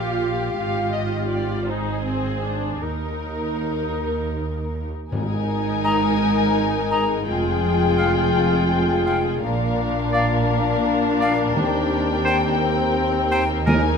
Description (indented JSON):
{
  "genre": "cinematic, emotional film score for orchestra",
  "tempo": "51-58 BPM (dotted quarters)",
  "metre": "6/8",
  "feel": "rubato",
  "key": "Ab lydian",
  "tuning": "A4 = 441 Hz",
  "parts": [
    { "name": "muted studio violin section", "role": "melody", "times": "0.0-14.0 s", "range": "Bb4 to Ab5", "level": "-28 LUFS", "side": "left 5 dB", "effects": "none" },
    { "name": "muted studio violin section", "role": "second line", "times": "0.0-14.0 s", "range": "G4 to Bb4", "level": "-28 LUFS", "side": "left 4 dB", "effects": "none" },
    { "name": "muted studio viola section", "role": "accompaniment", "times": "0.0-14.0 s", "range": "C4 to F4", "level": "-26 LUFS", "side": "right 1 dB", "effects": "none" },
    { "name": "muted studio cello section", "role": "bass", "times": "0.0-14.0 s", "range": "Eb2 to Bb2", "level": "-26 LUFS", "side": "right 2 dB", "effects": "none" },
    { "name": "muted studio double bass section", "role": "bass", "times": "0.0-14.0 s", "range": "F1 to Eb2", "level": "-28 LUFS", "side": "right 4 dB", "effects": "none" },
    { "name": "dark French horn section", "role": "sustained chords", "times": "5.1-14.0 s", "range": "Ab3 to Bb4", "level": "-25 LUFS", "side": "left 7 dB", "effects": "none" },
    { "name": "timpani", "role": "percussion", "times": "5.1-6.2, 11.6-14.0 s", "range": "Ab2 to Eb3", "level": "-24 LUFS", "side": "equal", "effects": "none" },
    { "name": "clear oboe", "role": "second line", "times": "5.8-13.8 s", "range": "Bb4 to F5", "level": "-27 LUFS", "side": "right 1 dB", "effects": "none" },
    { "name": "hollow concert flute", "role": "second line", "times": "5.8-13.7 s", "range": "F5 to Bb5", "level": "-27 LUFS", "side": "left 3 dB", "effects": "none" }
  ],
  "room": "moderate scoring stage reverb, RT60 1.4 s",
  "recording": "none",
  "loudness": "-19 LUFS",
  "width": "side -6 dB against mid",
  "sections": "0.0-5.1 A section; 5.1-14.0 B section",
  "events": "none",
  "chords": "0.0 Ebadd9/Bb (rootless); 0.6 Ab5; 2.8 Eb5; 5.1 Absus2; 7.3 Fmadd9; 9.4 Bb; 11.6 Eb6",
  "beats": "| 0.56 1.67 | 2.81 3.98 | 5.12 6.20 | 7.28 8.35 | 9.42 10.49 | 11.56 12.62 | 13.67"
}